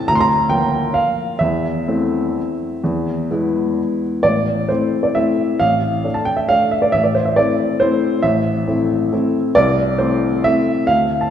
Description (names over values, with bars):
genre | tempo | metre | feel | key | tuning
classical, piano waltz | 123-145 BPM | 3/4 | rubato | A minor | A4 = 440 Hz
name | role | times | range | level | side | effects
warm upright piano | solo | 0.0-11.3 s | A1 to C6 | -15 LUFS | equal | none
room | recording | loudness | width
wet concert hall reverb, RT60 2.2 s | heard from further back in the room | -15 LUFS | side -9 dB against mid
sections
0.0-4.2 A section; 4.2-11.3 B section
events
none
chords
0.1 Bb/D; 1.4 Am/E; 2.8 E; 4.2 Am; 5.6 Dm/A; 6.9 Am; 9.6 Am/C